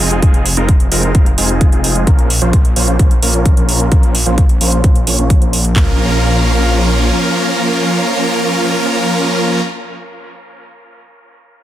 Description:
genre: EDM, festival progressive house.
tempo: 130 BPM.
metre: 4/4.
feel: straight.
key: Bb minor.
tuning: A4 = 440 Hz.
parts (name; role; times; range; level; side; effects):
big supersaw lead; riff; 0.0-9.6 s; F3 to Db5; -15 LUFS; equal; sidechain pumping, low-pass filter, dub echo.
wide detuned saw bass; bass; 0.0-7.1 s; F1 to Bb1; -16 LUFS; equal; chorus, sidechain pumping.
electronic hi-hat; drums; 0.1-5.7 s; none; -17 LUFS; right 2 dB; none.
house drum kit; drums; 0.2-5.9 s; handclaps, kick drum, toms; -11 LUFS; equal; none.
room: light reverb.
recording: dense, heavily limited modern master.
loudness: -10 LUFS.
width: side -12 dB against mid.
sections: 0.0-5.8 A section; 5.8-9.5 B section.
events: filter sweep on supersaw synth 0.0-5.8.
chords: 0.0 Fm7; 2.1 Bbm.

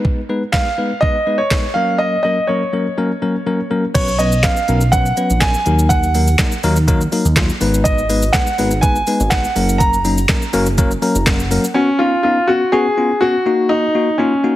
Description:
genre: dance-pop.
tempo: 123 BPM.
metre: 4/4.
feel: straight.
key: unclear.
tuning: A4 = 440 Hz.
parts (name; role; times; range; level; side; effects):
bell-like tine electric piano; accompaniment; 0.0-14.6 s; Gb3 to Bb5; -19 LUFS; left 2 dB; sidechain pumping.
smooth R&B drum kit; drums; 0.0-11.7 s; crash cymbal, handclaps, hi-hat, kick drum, shaker, snare drum; -18 LUFS; equal; none.
warm grand piano; melody; 0.5-14.6 s; C#4 to Bb5; -17 LUFS; equal; ping-pong delay.
chorused synth bass; bass; 4.0-11.6 s; Gb1 to Eb2; -17 LUFS; equal; sidechain pumping.
room: light reverb.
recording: heavily compressed radio sound, multiband compression.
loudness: -13 LUFS.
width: side -14 dB against mid.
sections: 0.0-4.0 A section; 4.0-11.8 B section; 11.8-14.6 C section.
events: tine electric piano fill 10.8-11.8.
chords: 0.0 Abm; 1.8 Gb; 4.0 Bsus2; 5.7 Ebm; 7.6 Abm; 9.6 Gb; 11.8 Bsus2; 13.5 Ebm.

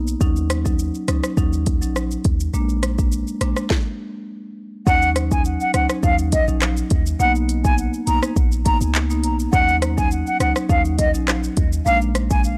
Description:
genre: dancehall.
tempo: 103 BPM.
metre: 4/4.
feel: straight.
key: Eb minor.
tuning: A4 = 439 Hz.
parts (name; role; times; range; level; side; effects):
warm 808-style bass; bass; 0.0-12.6 s; Bb1 to Eb2; -24 LUFS; equal; none.
afro-pop drum kit; drums; 0.1-12.6 s; handclaps, hi-hat, kick drum, rim click, shaker, snare drum; -23 LUFS; equal; none.
marimba with medium mallets; accompaniment; 0.2-12.6 s; Gb3 to Eb4; -28 LUFS; equal; none.
concert flute; melody; 4.9-12.4 s; Eb5 to A#5; -23 LUFS; equal; analog delay.
room: little or no reverb.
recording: dry, gritty hardware recording, transformer saturation.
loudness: -19 LUFS.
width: mono.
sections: 0.0-4.9 A section; 4.9-12.6 B section.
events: stop 3.7-4.9.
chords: 0.2 Ebm7; 2.5 Bb7; 4.9 Ebm7; 7.2 Bmaj7; 9.5 Ebm7; 11.9 Bb7.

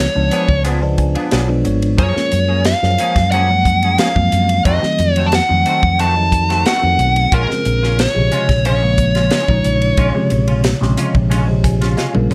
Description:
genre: electric jazz fusion.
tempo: 90 BPM.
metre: 4/4.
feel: straight.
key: Bb minor.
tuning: A4 = 442 Hz.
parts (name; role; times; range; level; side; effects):
smooth overdriven lead guitar; melody; 0.0-11.9 s; Bb4 to A5; -19 LUFS; equal; slapback echo.
barky tine electric piano; accompaniment; 0.0-12.3 s; C3 to Ab5; -22 LUFS; equal; phaser.
semi-hollow electric guitar; stabs; 0.0-12.3 s; Eb3 to Ab4; -27 LUFS; equal; ensemble chorus, plate reverb.
mellow fretless electric bass; bass; 0.0-12.3 s; Ab1 to Gb2; -19 LUFS; equal; subtle chorus.
crisp fusion drum kit; drums; 0.3-12.3 s; hi-hat, kick drum, ride cymbal, snare drum, toms; -22 LUFS; equal; none.
room: light reverb.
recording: dark, warm production.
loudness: -15 LUFS.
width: mono.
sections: 0.0-12.3 A section.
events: tine electric piano fill 0.7-2.0, 11.3-12.3; drum fill 12.0-12.3.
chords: 0.0 Db7b9; 2.0 Gbmaj9; 4.7 F7b9; 7.3 Bbm7.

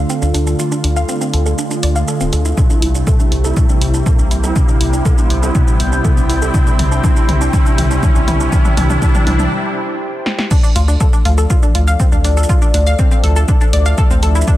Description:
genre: melodic techno.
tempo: 121 BPM.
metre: 4/4.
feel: straight.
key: D minor.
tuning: A4 = 440 Hz.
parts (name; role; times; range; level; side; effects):
sweeping resonant pad; sustained chords; 0.0-14.6 s; F3 to G5; -24 LUFS; left 1 dB; chorus, phaser, sidechain pumping.
analog pluck; arpeggios; 0.0-14.6 s; C4 to F6; -23 LUFS; equal; chorus, sidechain pumping, dub echo.
analog synth brass; stabs; 0.0-9.5 s; C3 to F4; -20 LUFS; right 1 dB; chorus, sidechain pumping, dub echo.
round analog bass; bass; 0.0-14.4 s; D1 to D2; -15 LUFS; equal; sidechain pumping.
riser; sound effects; 0.1-9.5 s; none; -26 LUFS; left 1 dB; none.
punchy analog drum machine; drums; 0.1-14.6 s; crash cymbal, hi-hat, shaker, snare drum, toms; -22 LUFS; equal; none.
electronic kick drum; drums; 2.6-14.6 s; none; -13 LUFS; equal; none.
room: light reverb.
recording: dense, heavily limited modern master.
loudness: -11 LUFS.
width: side -14 dB against mid.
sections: 0.0-10.5 A section; 10.5-14.6 B section.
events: build-up 0.0-10.5; filter sweep on analog polysynth 0.0-10.5; riser 0.1-9.5; drum fill 2.6-9.5, 10.3; break 9.5-10.5; drop 10.5-14.6.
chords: 0.0 Dm; 2.6 C; 10.5 Dm.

